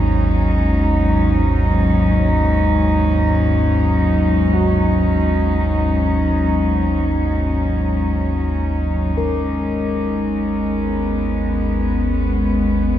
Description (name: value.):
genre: dark ambient drone.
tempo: free time.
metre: none.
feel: none.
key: G# minor.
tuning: A4 = 438 Hz.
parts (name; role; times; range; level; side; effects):
warm chamber cello section; sustained chords; 0.0-13.0 s; G#2 to D#4; -18 LUFS; left 1 dB; none.
clear baby grand piano; arpeggios; 0.0-13.0 s; C#3 to F#4; -34 LUFS; right 1 dB; none.
deep rumbling drone; drone; 0.0-13.0 s; G#1 to D#2; -18 LUFS; equal; built-in reverb, wide subtle chorus.
bronze singing bowl; texture; 9.2-13.0 s; A#4; -28 LUFS; left 7 dB; shimmer reverb.
room: wet cathedral reverb, RT60 6.3 s.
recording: in a vast, echoing space.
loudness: -15 LUFS.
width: side -11 dB against mid.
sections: 0.0-9.2 A section; 9.2-13.0 B section.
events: none.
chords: 0.0 D#m/G#; 9.2 G#m.